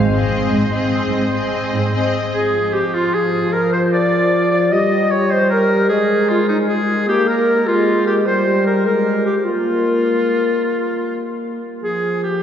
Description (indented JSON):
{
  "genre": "cinematic, heroic adventure film score",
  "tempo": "101 BPM (dotted quarters)",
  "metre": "12/8",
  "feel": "straight",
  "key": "unclear",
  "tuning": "A4 = 440 Hz",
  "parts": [
    { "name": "clear oboe", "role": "second line", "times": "0.0-12.4 s", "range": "Eb4 to Eb5", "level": "-23 LUFS", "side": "equal", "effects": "none" },
    { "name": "dark clarinet", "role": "second line", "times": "0.0-12.4 s", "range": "Eb4 to Eb5", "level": "-19 LUFS", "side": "equal", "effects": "none" },
    { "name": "mellow flute section", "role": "second line", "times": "0.0-2.1 s", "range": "Eb5", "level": "-33 LUFS", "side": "equal", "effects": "none" },
    { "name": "dark French horn section", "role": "sustained chords", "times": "0.0-12.4 s", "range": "F3 to C4", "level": "-19 LUFS", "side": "left 1 dB", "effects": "none" },
    { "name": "rich symphonic cello section", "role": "bass", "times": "0.0-2.2 s", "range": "Ab2", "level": "-22 LUFS", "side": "right 1 dB", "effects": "none" },
    { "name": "rich studio violin section", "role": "melody", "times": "0.1-2.3 s", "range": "Eb5", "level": "-28 LUFS", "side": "left 3 dB", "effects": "none" },
    { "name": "bright symphonic violin section", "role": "second line", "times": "0.1-2.3 s", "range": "Ab4", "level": "-32 LUFS", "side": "left 1 dB", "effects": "none" },
    { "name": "clear symphonic viola section", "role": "accompaniment", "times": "0.1-2.3 s", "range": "C4", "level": "-26 LUFS", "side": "equal", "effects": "none" }
  ],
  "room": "wet cathedral reverb, RT60 5.7 s",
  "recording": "recorded in a church or concert hall, nothing above 7.5 kHz",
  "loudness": "-14 LUFS",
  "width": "side -8 dB against mid",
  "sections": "0.0-2.3 A section; 2.3-12.4 B section",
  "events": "none",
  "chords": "0.0 Ab; 2.3 N.C.; 7.1 Bb5; 8.2 Gm; 9.4 N.C."
}